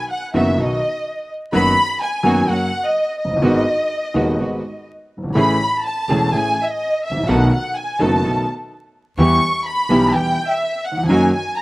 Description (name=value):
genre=tango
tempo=126 BPM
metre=4/4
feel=rubato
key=B major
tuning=A4 = 440 Hz
part: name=warm studio violin section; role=second line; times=0.0-11.6 s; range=D#5 to C#6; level=-19 LUFS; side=equal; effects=none
part: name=warm grand piano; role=accompaniment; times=0.3-11.3 s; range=D#1 to G#4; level=-18 LUFS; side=equal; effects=none
part: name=warm chamber string section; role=stabs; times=0.3-11.3 s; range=G#3 to A4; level=-26 LUFS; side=right 2 dB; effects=none
part: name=upright bass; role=bass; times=0.3-11.3 s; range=E1 to E2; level=-24 LUFS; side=equal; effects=none
room=little or no reverb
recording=recorded outdoors, with no room sound, vinyl crackle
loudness=-16 LUFS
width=side -20 dB against mid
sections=0.0-11.6 A section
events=violin section solo 0.0-11.6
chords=0.0 B/F#; 2.5 F#; 3.4 G#m7; 5.4 Amaj7; 7.3 B7; 9.2 Em; 11.1 F#6